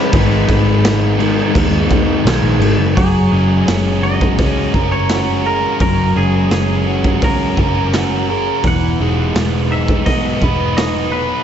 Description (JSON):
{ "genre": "rock, shoegaze and dream pop", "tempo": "85 BPM", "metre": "4/4", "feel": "straight", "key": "F# mixolydian", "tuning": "A4 = 440 Hz", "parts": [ { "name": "twangy electric guitar", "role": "melody", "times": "0.0-11.4 s", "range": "G#4 to F#5", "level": "-23 LUFS", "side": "equal", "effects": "spring reverb, tape echo" }, { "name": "overdriven electric guitar", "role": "riff", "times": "0.0-11.4 s", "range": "G#2 to B4", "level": "-20 LUFS", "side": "right 10 dB", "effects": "reverse reverb" }, { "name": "raw garage guitar", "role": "riff", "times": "0.0-3.0 s", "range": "G#2 to C#4", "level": "-20 LUFS", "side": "equal", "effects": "overdrive" }, { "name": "thick fuzz guitar", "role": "riff", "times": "0.0-11.4 s", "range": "E2 to B4", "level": "-18 LUFS", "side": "left 7 dB", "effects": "distortion, analog chorus" }, { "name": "vintage muted picked electric bass", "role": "bass", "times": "0.1-11.3 s", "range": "E1 to D#2", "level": "-18 LUFS", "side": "equal", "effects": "none" }, { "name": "raw garage drum kit", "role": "drums", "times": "0.1-10.9 s", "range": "crash cymbal, hi-hat, kick drum, snare drum", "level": "-19 LUFS", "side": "equal", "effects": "none" } ], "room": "light reverb, small room ambience", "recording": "nothing above 7.9 kHz", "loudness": "-12 LUFS", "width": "side -9 dB against mid", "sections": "0.0-3.0 A section; 3.0-11.4 B section", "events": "none", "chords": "0.1 G#m; 3.0 F#add9; 8.6 Emaj7" }